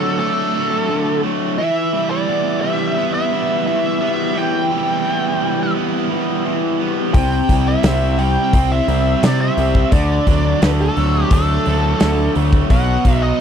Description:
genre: classic rock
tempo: 86 BPM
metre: 4/4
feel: straight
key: E minor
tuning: A4 = 440 Hz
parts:
  - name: bluesy overdriven lead guitar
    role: melody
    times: 0.0-13.4 s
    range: A4 to G5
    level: -21 LUFS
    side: equal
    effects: wah, distortion, tape echo
  - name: raw garage guitar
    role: riff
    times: 0.0-13.4 s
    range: B2 to E4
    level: -22 LUFS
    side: left 17 dB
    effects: overdrive
  - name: tight distorted guitar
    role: riff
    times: 0.0-13.4 s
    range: B2 to C4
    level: -21 LUFS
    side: right 18 dB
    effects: distortion
  - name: growling picked electric bass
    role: bass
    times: 7.1-13.3 s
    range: B1 to C3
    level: -18 LUFS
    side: left 1 dB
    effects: overdrive
  - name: big rock drum kit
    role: drums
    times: 7.1-13.2 s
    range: hi-hat, kick drum, snare drum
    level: -16 LUFS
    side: equal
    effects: none
room: little or no reverb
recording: dry, close 1970s-style studio recording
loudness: -14 LUFS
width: side -8 dB against mid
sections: 0.0-13.4 A section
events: none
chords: 0.0 D; 1.6 Em; 7.1 C; 9.9 D; 12.7 B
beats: 0.20 0.90 | 1.59 2.29 2.98 3.68 | 4.37 5.07 5.76 6.45 | 7.15 7.84 8.54 9.23 | 9.93 10.62 11.31 12.01 | 12.71 13.40

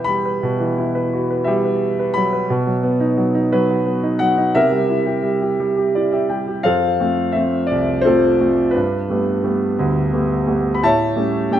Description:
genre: classical, lyrical solo piano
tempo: 58 BPM (dotted quarters)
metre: 6/8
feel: rubato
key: unclear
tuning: A4 = 442 Hz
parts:
  - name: warm concert grand piano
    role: solo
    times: 0.0-11.6 s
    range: C2 to B5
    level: -16 LUFS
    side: equal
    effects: none
room: moderate recital hall reverb, RT60 1.6 s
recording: none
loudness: -16 LUFS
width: side -10 dB against mid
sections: 0.0-6.7 A section; 6.7-11.6 B section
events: grand piano fill 5.6-6.7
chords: 0.0 Emadd9/B; 2.5 B; 4.5 C7; 6.7 F; 8.8 Gadd9; 10.8 A7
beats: | 0.41 1.46 | 2.49 3.51 | 4.54 5.58 | 6.65 7.71 | 8.75 9.79 | 10.83

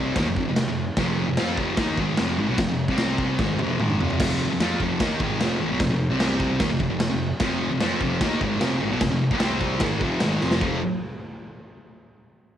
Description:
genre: garage rock duo or trio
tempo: 149 BPM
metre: 4/4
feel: straight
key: unclear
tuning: A4 = 441 Hz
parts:
  - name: thick fuzz guitar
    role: riff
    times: 0.0-10.8 s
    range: F2 to F4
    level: -23 LUFS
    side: equal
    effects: distortion, cassette tape
  - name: fuzz picked electric bass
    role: bass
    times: 0.0-10.8 s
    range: F1 to F2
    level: -32 LUFS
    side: equal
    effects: overdrive
  - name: raw garage drum kit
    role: drums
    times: 0.2-10.7 s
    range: crash cymbal, kick drum, snare drum, toms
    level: -25 LUFS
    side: equal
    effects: none
room: light reverb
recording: home recording on cassette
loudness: -21 LUFS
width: side -10 dB against mid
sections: 0.0-4.2 A section; 4.2-10.6 A section; 10.6-12.2 B section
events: drum fill 3.4-4.2, 10.4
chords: 0.2 F5; 2.9 C5; 3.4 F5; 6.1 C5; 6.6 F5; 9.3 C5; 9.8 F5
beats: 0.16 0.57 | 0.97 1.38 1.78 2.18 | 2.59 2.99 3.39 3.80 | 4.20 4.60 5.00 5.41 | 5.81 6.21 6.61 7.01 | 7.42 7.82 8.22 8.62 | 9.02 9.42 9.82 10.22 | 10.62

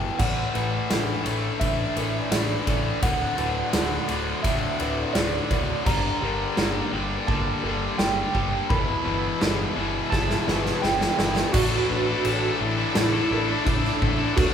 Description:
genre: post-rock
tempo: 85 BPM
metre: 4/4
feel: straight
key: unclear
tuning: A4 = 439 Hz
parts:
  - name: tine electric piano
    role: melody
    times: 0.0-14.5 s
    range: D4 to B5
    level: -29 LUFS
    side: right 3 dB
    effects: medium stereo tremolo
  - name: clear studio string section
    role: sustained chords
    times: 0.0-14.5 s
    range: G3 to D6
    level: -38 LUFS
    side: right 1 dB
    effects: none
  - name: felt-muted upright piano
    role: arpeggios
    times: 0.0-14.5 s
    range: A4 to D5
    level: -37 LUFS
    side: left 1 dB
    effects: none
  - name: twelve-string electric guitar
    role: arpeggios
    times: 0.0-14.5 s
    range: D2 to A4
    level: -34 LUFS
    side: left 2 dB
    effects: none
  - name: distorted electric guitar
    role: riff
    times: 0.0-14.5 s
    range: D2 to A4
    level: -28 LUFS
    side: left 6 dB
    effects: overdrive
  - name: growling picked electric bass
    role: bass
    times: 0.0-14.5 s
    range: D1 to A1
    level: -31 LUFS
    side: equal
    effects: overdrive
  - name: overdriven electric guitar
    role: riff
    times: 0.2-14.5 s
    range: D2 to A4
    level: -31 LUFS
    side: right 7 dB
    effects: none
  - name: huge arena drum kit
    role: drums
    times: 0.2-14.5 s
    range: crash cymbal, kick drum, ride cymbal, snare drum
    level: -26 LUFS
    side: equal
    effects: none
room: moderate large studio reverb, RT60 0.9 s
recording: band playing live in one room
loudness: -21 LUFS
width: side -8 dB against mid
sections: 0.0-11.5 A section; 11.5-14.5 B section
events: build-up 0.0-11.5; drum fill 10.1-11.5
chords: 0.2 Asus4; 3.0 D; 5.9 Gm; 8.7 Em/G; 11.5 Asus4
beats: | 0.20 0.91 1.61 2.32 | 3.03 3.74 4.45 5.16 | 5.87 6.58 7.28 7.99 | 8.70 9.41 10.12 10.83 | 11.54 12.25 12.96 13.67 | 14.38

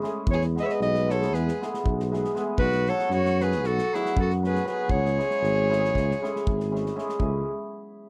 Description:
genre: balkan folk, Balkan wedding band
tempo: 234 BPM (eighths)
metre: 9/8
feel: straight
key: C# minor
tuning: A4 = 439 Hz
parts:
  - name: cimbalom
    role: accompaniment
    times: 0.0-7.5 s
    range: F#3 to G#4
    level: -32 LUFS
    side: equal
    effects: none
  - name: loose indie drum kit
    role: percussion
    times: 0.0-7.5 s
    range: kick drum, snare drum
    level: -34 LUFS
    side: equal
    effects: none
  - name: warm clarinet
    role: melody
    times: 0.3-6.7 s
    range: G#4 to E5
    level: -29 LUFS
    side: equal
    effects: none
  - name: rich violin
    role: second line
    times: 0.3-6.7 s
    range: E4 to C#5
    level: -36 LUFS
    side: equal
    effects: none
  - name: mellow tuba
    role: bass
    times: 0.3-7.5 s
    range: G#1 to F#2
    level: -29 LUFS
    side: equal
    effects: none
room: little or no reverb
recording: none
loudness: -25 LUFS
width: mono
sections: 0.0-7.2 A section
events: none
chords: 0.3 E; 2.6 B; 4.9 C#m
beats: 0.02 | 0.28 0.54 0.79 1.05 1.31 1.56 1.82 2.08 2.34 | 2.59 2.85 3.11 3.36 3.62 3.88 4.13 4.39 4.64 | 4.90 5.16 5.41 5.67 5.92 6.18 6.43 6.69 6.94 | 7.20 7.45

